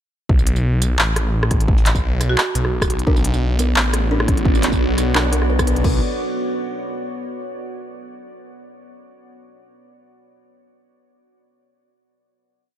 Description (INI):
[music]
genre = half-time drum and bass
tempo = 173 BPM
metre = 4/4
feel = swing 53% on 16ths, half-time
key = B minor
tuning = A4 = 442 Hz
[part]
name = phased detuned saw bass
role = bass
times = 0.3-6.0 s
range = A1 to B1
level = -19 LUFS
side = equal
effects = phaser, tube saturation
[part]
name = electronic kick drum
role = drums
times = 0.3-5.9 s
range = none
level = -18 LUFS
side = equal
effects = none
[part]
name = industrial drum kit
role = drums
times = 0.4-5.9 s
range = crash cymbal, handclaps, hi-hat, rim click, tambourine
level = -22 LUFS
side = equal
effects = none
[part]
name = buzzing marimba with hard mallets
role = melody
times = 2.3-2.6 s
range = F#4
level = -28 LUFS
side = right 3 dB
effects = tape echo
[part]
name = deep dark ambient pad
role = sustained chords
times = 3.7-6.0 s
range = B3 to D5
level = -26 LUFS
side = equal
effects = chorus, built-in reverb, sidechain pumping
[part]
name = kalimba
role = arpeggios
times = 3.1-6.0 s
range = B3 to B4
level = -26 LUFS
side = equal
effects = tape echo
[sound]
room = little or no reverb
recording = none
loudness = -16 LUFS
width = side -11 dB against mid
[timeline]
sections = 0.3-5.8 drop; 5.8-7.2 final chord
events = drop 0.3-5.8; band accent 5.6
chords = 0.3 Bm